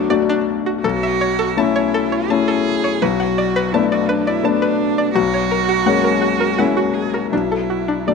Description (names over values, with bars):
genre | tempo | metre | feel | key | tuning
neoclassical piano and strings | 83 BPM | 3/4 | rubato | B dorian | A4 = 444 Hz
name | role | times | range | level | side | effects
rich cello | second line | 0.0-8.1 s | D4 to G#4 | -21 LUFS | right 10 dB | none
warm concert grand piano | accompaniment | 0.0-8.1 s | B1 to F#4 | -18 LUFS | left 8 dB | none
string-like resonator pluck | arpeggios | 0.0-8.1 s | D4 to A5 | -22 LUFS | equal | chorus, slapback echo
room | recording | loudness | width
wet echo chamber reverb, RT60 2.3 s | 1960s-style stereo with parts hard left and right | -15 LUFS | side -5 dB against mid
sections
0.0-8.1 A section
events
none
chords
0.0 D/B; 0.8 A/B; 3.0 Bm7; 5.1 F#add9/B; 7.3 D/B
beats
0.10 | 0.84 1.57 2.30 | 3.01 3.73 4.44 | 5.14 5.86 6.58 | 7.32 8.07